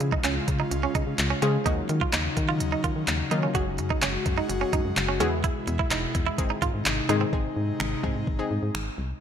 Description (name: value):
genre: dance-pop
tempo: 127 BPM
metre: 4/4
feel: straight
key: unclear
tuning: A4 = 440 Hz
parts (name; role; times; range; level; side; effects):
- wide unison pluck; accompaniment; 0.0-9.0 s; Eb3 to Ab4; -30 LUFS; left 3 dB; sidechain pumping
- airy breathy pad; sustained chords; 0.0-9.2 s; B2 to Gb4; -31 LUFS; left 2 dB; chorus, sidechain pumping
- direct-recorded clean electric guitar; riff; 0.0-7.3 s; C4 to Gb4; -30 LUFS; right 9 dB; lush chorus
- solid FM bass; bass; 0.0-9.1 s; E1 to Eb3; -29 LUFS; equal; sidechain pumping
- smooth R&B drum kit; drums; 0.0-8.9 s; finger snaps, handclaps, hi-hat, kick drum; -28 LUFS; equal; gated reverb
room: light reverb, digital ambience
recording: bright 1980s-style digital production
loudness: -23 LUFS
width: side -8 dB against mid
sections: 0.0-7.3 A section; 7.3-9.2 B section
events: none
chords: 0.0 Db; 1.7 Ebm7; 3.5 Gbsus2; 5.2 E; 6.4 Ab